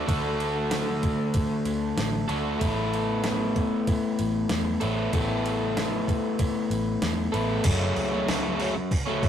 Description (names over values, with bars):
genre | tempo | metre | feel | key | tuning
rock, shoegaze and dream pop | 95 BPM | 4/4 | straight | unclear | A4 = 440 Hz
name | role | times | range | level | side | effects
crunchy overdriven guitar | riff | 0.0-9.3 s | F#2 to A4 | -26 LUFS | left 1 dB | none
vintage muted picked electric bass | bass | 0.1-9.3 s | F#1 to E2 | -32 LUFS | equal | none
crisp 8-bit digital drum machine | drums | 0.1-9.3 s | crash cymbal, kick drum, ride cymbal, snare drum | -29 LUFS | equal | none
room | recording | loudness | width
moderate booth ambience, RT60 0.2 s | rough rehearsal-room recording, tube saturation | -24 LUFS | side -9 dB against mid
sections
0.0-7.7 A section; 7.7-9.3 B section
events
none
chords
0.0 D; 2.6 Asus2; 7.7 F#m